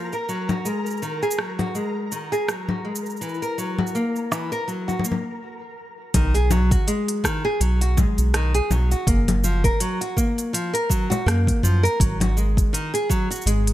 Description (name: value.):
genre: folktronica.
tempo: 82 BPM.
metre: 4/4.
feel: swing 56% on 16ths.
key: F# major.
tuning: A4 = 439 Hz.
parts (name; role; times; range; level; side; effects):
nylon-string guitar; arpeggios; 0.0-13.7 s; D#3 to A#4; -24 LUFS; equal; low-pass filter, tape echo.
flickering grainy texture; texture; 0.0-5.4 s; A#4 to A#5; -35 LUFS; left 1 dB; built-in reverb.
organic electronic drum kit; drums; 0.1-13.7 s; cabasa, congas, hi-hat, rim click; -26 LUFS; left 2 dB; studio reverb.
round analog bass; bass; 6.1-13.7 s; F#1 to F#2; -19 LUFS; equal; none.
electronic kick drum; drums; 6.1-13.3 s; none; -22 LUFS; equal; studio reverb.
room: digital ambience.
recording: none.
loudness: -20 LUFS.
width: side -14 dB against mid.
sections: 0.0-6.1 A section; 6.1-13.7 B section.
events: stop 5.4-6.1.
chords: 0.3 G#5; 3.2 F#7; 6.1 B6; 9.1 F#maj7; 12.0 G#5.